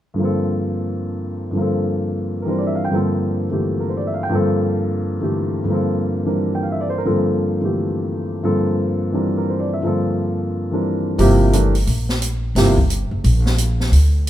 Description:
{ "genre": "modal jazz", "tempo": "175 BPM", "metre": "4/4", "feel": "swing 63% on 8ths", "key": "G dorian", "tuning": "A4 = 436 Hz", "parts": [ { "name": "warm grand piano", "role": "accompaniment", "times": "0.1-12.8 s", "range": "G2 to G5", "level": "-18 LUFS", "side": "equal", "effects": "none" }, { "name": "upright bass", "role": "bass", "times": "11.2-14.3 s", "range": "F#1 to D2", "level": "-16 LUFS", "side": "equal", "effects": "none" }, { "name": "open jazz drum kit", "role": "drums", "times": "11.2-14.3 s", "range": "hi-hat, kick drum, snare drum", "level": "-23 LUFS", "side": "equal", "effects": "none" } ], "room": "light reverb", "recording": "minimal, uncompressed stereo recording", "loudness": "-17 LUFS", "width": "side -12 dB against mid", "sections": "0.2-11.2 A section; 11.2-14.3 B section", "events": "none", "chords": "0.2 Gm11" }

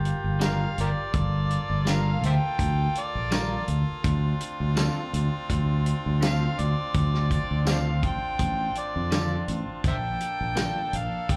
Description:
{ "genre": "straight-eighth soul blues", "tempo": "83 BPM", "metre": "4/4", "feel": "swing 53% on 16ths", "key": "D minor", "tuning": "A4 = 440 Hz", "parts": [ { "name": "brilliant horn section", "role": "sustained chords", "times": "0.0-11.4 s", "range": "Bb3 to A4", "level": "-38 LUFS", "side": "equal", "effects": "plate reverb" }, { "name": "fingered electric bass", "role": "bass", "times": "0.0-11.4 s", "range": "G1 to F2", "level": "-28 LUFS", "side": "equal", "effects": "none" }, { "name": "warm soul drum kit", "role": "drums", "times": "0.1-11.4 s", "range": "hi-hat, kick drum, snare drum, tambourine", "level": "-31 LUFS", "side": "equal", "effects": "none" }, { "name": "electric guitar through a small old amp", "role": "stabs", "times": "0.4-10.8 s", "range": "D3 to Bb4", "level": "-36 LUFS", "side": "equal", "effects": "plate reverb, slapback echo" }, { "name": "overdriven harmonica", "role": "melody", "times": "0.5-11.4 s", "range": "G4 to G5", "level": "-33 LUFS", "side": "equal", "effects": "plate reverb, slapback echo" } ], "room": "light reverb", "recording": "live gig heard through the venue's PA, club reverb", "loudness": "-26 LUFS", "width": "mono", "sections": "0.0-11.4 A section", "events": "harmonica solo 0.0-11.4", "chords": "0.0 Gm7; 4.0 Dm7; 9.8 Bbmaj7" }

